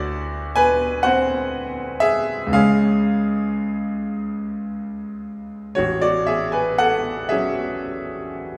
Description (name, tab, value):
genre	classical, romantic nocturne for solo piano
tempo	36-43 BPM (dotted quarters)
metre	6/8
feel	rubato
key	F# minor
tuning	A4 = 441 Hz
part	bright grand piano	solo	0.0-8.6 s	A1 to G#5	-22 LUFS	equal	none
room	wet recital hall reverb, RT60 1.5 s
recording	heard from further back in the room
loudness	-21 LUFS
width	mono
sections	0.0-8.6 A section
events	none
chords	0.0 D7; 2.6 C#; 5.8 F#m/A